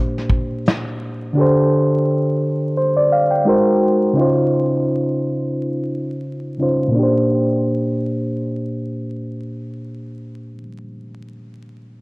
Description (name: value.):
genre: lo-fi hip hop.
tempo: 86 BPM.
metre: 4/4.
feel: swing 56% on 16ths.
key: Bb major.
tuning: A4 = 440 Hz.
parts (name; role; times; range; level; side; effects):
mellow reed electric piano; accompaniment; 0.0-12.0 s; Bb2 to G5; -17 LUFS; equal; cassette tape, low-pass filter.
soft brush drum kit; drums; 0.2-0.8 s; hi-hat, kick drum, snare drum; -18 LUFS; equal; vintage 12-bit sampler grit.
room: moderate spring reverb, RT60 2.5 s.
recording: worn, warbling old tape, cassette tape, vinyl crackle, warbly pitch drift.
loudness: -16 LUFS.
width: side -25 dB against mid.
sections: 0.0-6.9 A section; 6.9-9.7 B section.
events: filter sweep on reed electric piano 0.0-6.9.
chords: 0.0 Bb69; 1.4 D7sus4; 3.4 Ab7; 4.1 Dbmaj7; 6.9 Bb69.